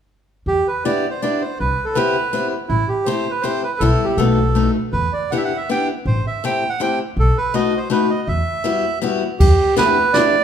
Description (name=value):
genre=musette waltz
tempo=162 BPM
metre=3/4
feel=rubato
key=E minor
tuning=A4 = 440 Hz
part: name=bandoneon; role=melody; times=0.5-10.4 s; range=E4 to G5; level=-19 LUFS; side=right 4 dB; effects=none
part: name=upright bass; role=bass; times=0.5-9.5 s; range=A1 to E2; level=-19 LUFS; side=equal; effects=none
part: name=picked steel-string acoustic guitar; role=accompaniment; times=0.9-10.3 s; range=G3 to G4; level=-21 LUFS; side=left 4 dB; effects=none
part: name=jazz brush drum kit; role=drums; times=9.4-10.2 s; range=crash cymbal, hi-hat, kick drum, snare drum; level=-18 LUFS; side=equal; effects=none
room=moderate large studio reverb, RT60 1.5 s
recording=band playing live in one room, faint mains hum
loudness=-16 LUFS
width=side -8 dB against mid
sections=0.5-9.4 A section; 9.4-10.4 A section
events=none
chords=0.5 Em7; 1.6 Cmaj7; 2.7 Am7; 3.8 Em/B; 4.2 B7; 4.9 Em7; 6.1 Am7; 7.2 B7; 8.3 Emadd9; 9.4 Em7